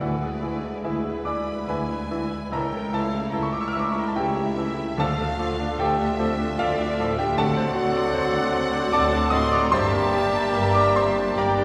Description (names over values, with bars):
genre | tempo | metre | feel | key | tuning
classical | 70-78 BPM | 3/4 | rubato | unclear | A4 = 443 Hz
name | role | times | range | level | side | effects
clear grand piano | melody | 0.0-11.6 s | C#2 to F6 | -27 LUFS | equal | none
warm studio violin section | melody | 0.0-11.6 s | B4 to F#5 | -39 LUFS | equal | none
hollow small flute group | second line | 0.0-11.6 s | G#5 to C6 | -38 LUFS | equal | none
rich studio violin section | second line | 0.0-11.6 s | B4 to D6 | -37 LUFS | equal | none
warm clarinet | second line | 0.0-11.6 s | E4 to A4 | -34 LUFS | equal | none
warm oboe | second line | 0.0-11.6 s | D5 to E5 | -37 LUFS | equal | none
rich studio viola section | accompaniment | 0.0-11.6 s | G#3 to G4 | -38 LUFS | equal | none
warm bassoon | accompaniment | 0.0-11.6 s | E3 to G3 | -35 LUFS | equal | none
mellow French horn section | sustained chords | 0.0-11.6 s | G#3 to G4 | -34 LUFS | equal | none
dark studio double bass section | bass | 0.0-11.6 s | G1 to D2 | -34 LUFS | equal | none
rich studio cello section | bass | 0.0-11.6 s | C#2 to G2 | -34 LUFS | equal | none
timpani | percussion | 0.0-6.2 s | D3 | -36 LUFS | equal | none
room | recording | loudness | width
wet scoring stage reverb, RT60 1.7 s | recorded in a church or concert hall | -23 LUFS | mono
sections
0.0-11.6 A section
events
none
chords
0.0 E7/D; 2.5 A/C#; 5.0 Dm; 7.4 D7; 9.7 Gm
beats
| 0.01 0.84 1.69 | 2.53 3.34 4.17 | 4.99 5.80 6.60 | 7.38 8.15 8.94 | 9.73 10.55 11.37